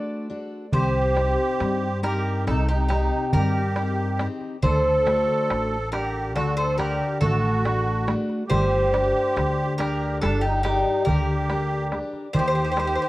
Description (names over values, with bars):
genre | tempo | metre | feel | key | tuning
greek folk, Greek bouzouki band | 139 BPM (eighths) | 9/8 | straight | unclear | A4 = 438 Hz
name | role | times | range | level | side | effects
Greek bouzouki | melody | 0.0-13.1 s | G4 to D5 | -26 LUFS | equal | none
picked steel-string acoustic guitar | accompaniment | 0.0-13.1 s | C3 to F#5 | -28 LUFS | left 2 dB | none
musette accordion | second line | 0.7-13.1 s | D4 to A4 | -28 LUFS | right 2 dB | none
upright bass | bass | 0.7-13.0 s | G1 to G2 | -26 LUFS | equal | none
darbuka | percussion | 0.7-13.0 s | none | -27 LUFS | right 1 dB | none
room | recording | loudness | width
light reverb | worn, warbling old tape, cassette tape, warbly pitch drift | -20 LUFS | side -17 dB against mid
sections
0.7-13.1 A section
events
break 0.0-0.7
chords
0.0 D; 0.7 Cm; 4.6 D; 8.5 Gm; 12.4 Eb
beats
0.31 | 0.74 1.18 1.61 2.04 2.48 2.91 3.34 3.78 4.21 | 4.64 5.07 5.50 5.93 6.37 6.80 7.23 7.66 8.09 | 8.51 8.94 9.37 9.80 10.23 10.65 11.08 11.51 11.93 | 12.36 12.78